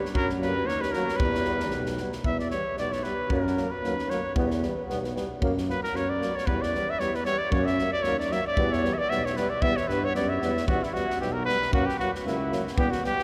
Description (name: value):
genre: balkan folk, Balkan brass band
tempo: 114 BPM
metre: 2/4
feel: swing 56% on 16ths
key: E dorian sharp4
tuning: A4 = 439 Hz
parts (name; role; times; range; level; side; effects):
- mellow trumpet; melody; 0.0-13.2 s; E4 to E5; -31 LUFS; equal; none
- warm alto saxophone; second line; 0.0-2.0 s; F#3 to A#3; -38 LUFS; equal; none
- mellow tuba; bass; 0.1-12.9 s; B1 to G2; -33 LUFS; equal; none
- natural country drum kit; percussion; 0.1-13.2 s; kick drum, snare drum; -35 LUFS; equal; none
- warm euphonium; accompaniment; 0.4-13.2 s; F#3 to G3; -37 LUFS; equal; none
- warm trombone; accompaniment; 0.4-13.1 s; A#3 to B3; -37 LUFS; equal; none
room: wet cathedral reverb, RT60 5.8 s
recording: recorded in a church or concert hall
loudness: -27 LUFS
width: mono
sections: 0.0-2.3 A section; 2.3-10.7 B section; 10.7-13.2 C section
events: trumpet solo 2.3-10.7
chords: 0.1 F#; 1.2 Em; 3.3 F#; 4.4 Em; 5.4 F#; 6.5 Em; 7.5 F#; 8.6 Em; 11.7 F#